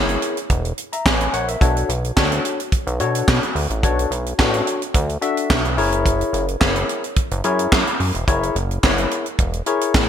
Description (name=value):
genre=early-eighties boogie funk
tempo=108 BPM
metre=4/4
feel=straight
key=B dorian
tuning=A4 = 439 Hz
part: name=barky tine electric piano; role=accompaniment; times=0.0-10.1 s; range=D4 to A#5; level=-22 LUFS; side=left 4 dB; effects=overdrive, lush chorus
part: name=chorused synth bass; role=bass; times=0.0-10.1 s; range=E1 to B2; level=-22 LUFS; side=right 1 dB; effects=none
part: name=tight funk drum kit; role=drums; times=0.1-10.1 s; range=handclaps, hi-hat, kick drum, snare drum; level=-19 LUFS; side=right 1 dB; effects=gated reverb
room=light reverb, small room ambience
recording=bright 1980s-style digital production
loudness=-17 LUFS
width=side -9 dB against mid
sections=0.0-10.1 A section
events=none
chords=0.0 F#7; 1.6 Bm7; 5.8 F#7